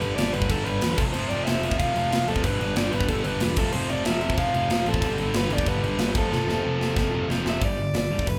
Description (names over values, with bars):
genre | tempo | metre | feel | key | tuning
punk rock | 185 BPM | 4/4 | straight | G mixolydian | A4 = 440 Hz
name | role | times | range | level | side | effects
overdriven electric guitar | melody | 0.0-8.4 s | A4 to F5 | -31 LUFS | equal | none
distorted electric guitar | riff | 0.0-8.4 s | F2 to G3 | -33 LUFS | equal | distortion
thick fuzz guitar | riff | 0.0-7.6 s | F2 to G3 | -37 LUFS | equal | none
tight distorted guitar | riff | 0.0-7.6 s | F2 to G3 | -36 LUFS | equal | distortion
fuzz picked electric bass | bass | 0.0-8.4 s | E1 to A1 | -32 LUFS | equal | overdrive
tight metal drum kit | drums | 0.0-8.4 s | crash cymbal, hi-hat, kick drum, snare drum | -29 LUFS | equal | none
room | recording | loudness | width
light reverb | band playing live in one room | -24 LUFS | mono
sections
0.0-7.6 A section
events
drum fill 6.3-7.6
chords
0.0 G; 1.0 F5; 2.4 G; 3.6 F; 5.0 G; 6.2 F; 7.6 G5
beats
0.18 0.50 0.82 | 1.15 1.47 1.79 2.12 | 2.44 2.77 3.09 3.41 | 3.74 4.06 4.38 4.71 | 5.03 5.36 5.68 6.00 | 6.33 6.65 6.98 7.30 | 7.63 7.95 8.28